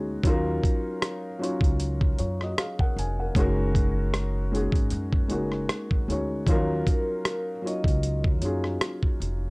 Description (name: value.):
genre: lo-fi hip hop.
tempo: 77 BPM.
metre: 4/4.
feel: swing 56% on 16ths.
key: Eb minor.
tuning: A4 = 441 Hz.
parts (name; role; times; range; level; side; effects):
felt-muted upright piano; accompaniment; 0.0-9.5 s; F3 to Ab5; -29 LUFS; left 1 dB; low-pass filter.
upright bass; bass; 0.0-9.5 s; F1 to Gb2; -28 LUFS; equal; none.
dusty soul sampler-style drum kit; drums; 0.2-9.4 s; hi-hat, kick drum, rim click; -24 LUFS; equal; none.
vibraphone with soft mallets; melody; 6.9-8.2 s; Bb4 to Eb5; -33 LUFS; equal; low-pass filter, tape echo.
room: little or no reverb.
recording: dry, gritty hardware recording.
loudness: -23 LUFS.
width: side -30 dB against mid.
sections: 0.0-9.5 A section.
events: none.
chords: 0.2 Ebm9; 3.4 Gb69; 6.5 Ebm9.